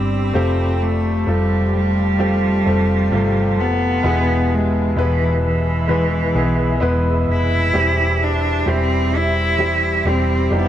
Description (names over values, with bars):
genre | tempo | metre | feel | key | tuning
pop | 65 BPM | 4/4 | straight | unclear | A4 = 440 Hz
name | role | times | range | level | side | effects
rich cello | melody | 0.0-10.7 s | E3 to E4 | -19 LUFS | equal | tape echo
bright grand piano | accompaniment | 0.0-10.7 s | B2 to B4 | -22 LUFS | left 1 dB | none
shimmering ambient pad | sustained chords | 0.0-10.7 s | G4 to E6 | -28 LUFS | left 1 dB | chorus, built-in reverb
clean electric guitar | arpeggios | 0.0-10.7 s | E2 to G4 | -28 LUFS | right 1 dB | none
hollow-body short-scale picked electric bass | bass | 0.0-10.7 s | E1 to B1 | -20 LUFS | equal | none
room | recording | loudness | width
light reverb | none | -15 LUFS | side -11 dB against mid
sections
0.4-10.7 A section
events
none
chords
0.4 Fadd9; 4.0 E; 7.7 C/E